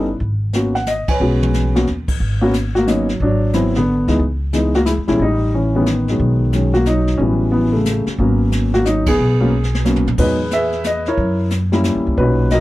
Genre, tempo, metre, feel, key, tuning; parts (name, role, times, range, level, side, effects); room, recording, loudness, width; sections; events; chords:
jazz piano trio; 180 BPM; 3/4; swing 64% on 8ths; G# minor; A4 = 440 Hz
warm baby grand piano; melody; 0.0-12.6 s; A#2 to G#5; -16 LUFS; equal
upright bass; bass; 0.0-12.6 s; G1 to B2; -19 LUFS; equal
jazz brush drum kit; drums; 0.2-12.6 s; brushed snare drum, crash cymbal, hi-hat, kick drum, ride cymbal, snare drum, toms; -25 LUFS; equal
light reverb; -14 LUFS; side -16 dB against mid
0.0-2.2 A section; 2.2-10.2 A section; 10.2-12.6 B section
band accent 1.0, 9.0; drum fill 1.2-1.9, 9.5-10.2
0.2 G#m11; 3.2 G#m7b13; 4.2 C#m7; 5.2 A9; 6.2 B6; 7.2 A13; 8.2 G#m11; 10.2 Emaj7; 11.2 F#7b9